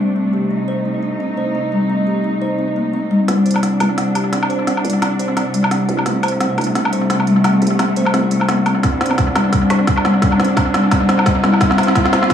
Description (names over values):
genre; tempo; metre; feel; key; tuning
half-time drum and bass; 173 BPM; 4/4; swing 58% on 16ths, half-time; C dorian; A4 = 440 Hz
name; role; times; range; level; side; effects
muted studio cello section; sustained chords; 0.0-12.3 s; C3 to F4; -20 LUFS; right 1 dB; sidechain pumping, low-pass filter
kalimba; arpeggios; 0.0-12.3 s; G3 to C5; -18 LUFS; left 2 dB; low-pass filter, tape echo
growling 808-style bass; bass; 3.3-12.3 s; Bb1 to C2; -25 LUFS; equal; none
organic electronic drum kit; drums; 3.3-12.3 s; hi-hat, snare drum, woodblock; -18 LUFS; equal; low-pass filter on cymbals, low-pass filter on snare, low-pass filter on hats, low-pass filter on perc, tape echo
riser; sound effects; 5.3-12.3 s; none; -26 LUFS; right 1 dB; none
electronic kick drum; drums; 8.8-12.3 s; none; -18 LUFS; equal; overdrive
room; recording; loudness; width
wet spring reverb, RT60 1.1 s, digital ambience; echo-heavy mix, studio ambience; -14 LUFS; side -9 dB against mid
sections
0.0-3.3 A section; 3.3-12.3 B section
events
build-up 3.3-12.3; drum fill 3.3-12.3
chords
0.0 Cmadd9; 3.3 Csus2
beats
0.17 | 0.51 0.86 1.21 1.55 | 1.90 2.25 2.59 2.94 | 3.29 3.63 3.98 4.33 | 4.67 5.02 5.37 5.71 | 6.06 6.41 6.75 7.10 | 7.45 7.79 8.14 8.49 | 8.84 9.18 9.53 9.88 | 10.22 10.57 10.92 11.26 | 11.61 11.96 12.30